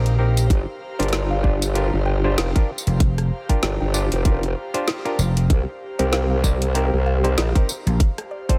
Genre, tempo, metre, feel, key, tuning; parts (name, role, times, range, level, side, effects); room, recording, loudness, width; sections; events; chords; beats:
glitch hop; 96 BPM; 4/4; swing 57% on 16ths; G minor pentatonic; A4 = 439 Hz
mellow clav; stabs; 0.0-8.6 s; C4 to D5; -30 LUFS; equal; vintage 12-bit sampler grit, sidechain pumping, analog delay
vintage slap bass; bass; 0.0-8.0 s; F1 to Bb1; -21 LUFS; equal; tube saturation
airy breathy pad; texture; 0.0-8.6 s; G4 to Bb5; -36 LUFS; equal; chorus, sidechain pumping
drum and bass drum kit; drums; 0.1-8.6 s; hi-hat, rim click, snare drum, tambourine; -30 LUFS; equal
formant-sweep wobble bass; bass; 0.5-7.5 s; F1 to C2; -23 LUFS; equal; chorus, overdrive
electronic kick drum; drums; 0.5-8.6 s; -20 LUFS; equal
woody wave-folded pluck; melody; 1.0-8.6 s; C5 to G5; -37 LUFS; equal
light reverb, digital ambience; -21 LUFS; mono
0.0-8.6 A section
0.0 Cm7; 0.5 Gm7; 5.5 Cm7; 8.0 F
| 0.50 1.13 1.75 2.38 | 3.00 3.63 4.25 4.88 | 5.50 6.13 6.75 7.38 | 8.00